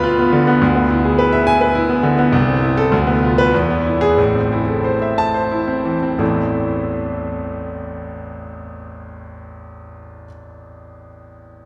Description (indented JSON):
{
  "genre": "classical, virtuoso piano study",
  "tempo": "86-106 BPM",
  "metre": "3/4",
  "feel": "rubato",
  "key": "A minor",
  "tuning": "A4 = 439 Hz",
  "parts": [
    { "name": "clear grand piano", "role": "solo", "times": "0.0-11.7 s", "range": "A1 to B5", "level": "-18 LUFS", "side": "equal", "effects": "none" }
  ],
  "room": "wet cathedral reverb, RT60 4.4 s",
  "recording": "recorded in a church or concert hall",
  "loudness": "-16 LUFS",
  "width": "mono",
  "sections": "0.0-6.2 A section; 6.2-10.3 B section",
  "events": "slowing down 1.5-6.2",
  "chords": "0.0 Bdim/D; 0.6 E7/D; 2.3 Am/C; 2.9 Bdim/D; 3.5 E; 4.2 Am"
}